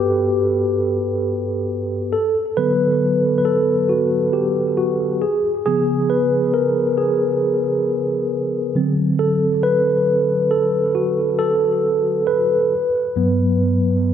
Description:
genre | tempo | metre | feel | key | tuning
R&B | 68 BPM | 4/4 | swing 54% on 16ths | unclear | A4 = 439 Hz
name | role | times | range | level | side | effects
mellow tine electric piano | solo | 0.0-14.1 s | G2 to B4 | -16 LUFS | equal | medium stereo tremolo, analog delay
room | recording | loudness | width
wet lush hall reverb, RT60 1.7 s, digital ambience | dreamy mix soaked in reverb | -16 LUFS | side -9 dB against mid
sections
0.0-14.1 A section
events
tine electric piano solo 0.0-14.1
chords
0.0 Gmaj7; 2.1 D6; 5.2 C#7; 8.8 D7; 12.7 Gmaj7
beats
0.37 1.25 | 2.13 3.02 3.90 4.78 | 5.66 6.54 7.43 8.31 | 9.19 10.07 10.96 11.84 | 12.72 13.60

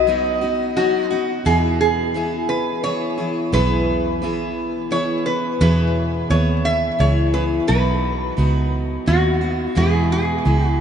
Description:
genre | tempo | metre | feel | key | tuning
honky-tonk and classic country | 87 BPM | 3/4 | straight | E major | A4 = 444 Hz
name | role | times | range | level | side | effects
lap resonator guitar | melody | 0.0-10.8 s | F#4 to E5 | -21 LUFS | equal | tape echo
picked steel-string acoustic guitar | accompaniment | 0.0-10.8 s | E2 to G#4 | -22 LUFS | left 1 dB | none
pedal steel guitar | sustained chords | 0.0-1.4 s | B4 to D#5 | -35 LUFS | right 2 dB | wide subtle chorus
vintage muted fingered electric bass | bass | 0.0-10.8 s | B1 to E2 | -19 LUFS | right 1 dB | none
room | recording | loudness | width
wet cathedral reverb, RT60 5.4 s | in a vast, echoing space, nothing above 10.6 kHz | -17 LUFS | side -8 dB against mid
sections
0.0-1.5 A section; 1.5-10.8 B section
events
resonator guitar played with a steel bar solo 0.0-1.5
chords
0.0 B; 1.5 E; 7.7 B; 9.8 E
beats
0.07 0.77 | 1.46 2.15 2.84 | 3.54 4.23 4.92 | 5.61 6.30 7.00 | 7.69 8.38 9.07 | 9.76 10.46

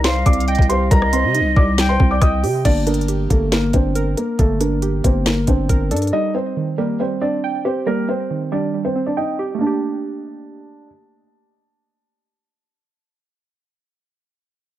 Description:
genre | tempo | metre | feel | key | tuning
hip hop, trap | 138 BPM | 4/4 | half-time | G minor | A4 = 440 Hz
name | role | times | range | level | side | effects
felt-muted upright piano | melody | 0.0-10.9 s | A3 to Eb6 | -22 LUFS | left 1 dB | low-pass filter
concert flute | second line | 0.0-2.2 s | Eb5 to G5 | -23 LUFS | right 1 dB | ping-pong delay
warbly dusty pluck | accompaniment | 0.0-12.8 s | Eb3 to G5 | -23 LUFS | right 5 dB | chorus, low-pass filter
growling 808-style bass | bass | 0.0-6.1 s | G1 to C3 | -20 LUFS | equal | none
trap drum kit | drums | 0.0-6.1 s | crash cymbal, hi-hat, kick drum, rim click, snare drum | -17 LUFS | equal | none
room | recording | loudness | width
little or no reverb | none | -16 LUFS | side -13 dB against mid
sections
0.0-2.6 A section; 2.6-9.6 B section; 9.6-13.1 C section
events
filter sweep 2.6-9.6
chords
0.0 Cm; 2.6 Gmadd9; 6.1 Cm; 9.6 Gmadd9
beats
0.04 0.48 | 0.91 1.35 1.78 2.22 | 2.65 3.08 3.52 3.96 | 4.39 4.82 5.26 5.69 | 6.13 6.56 7.00 7.43 | 7.87 8.30 8.74 9.17 | 9.61 10.04 10.48 10.91 | 11.35 11.78 12.22 12.65

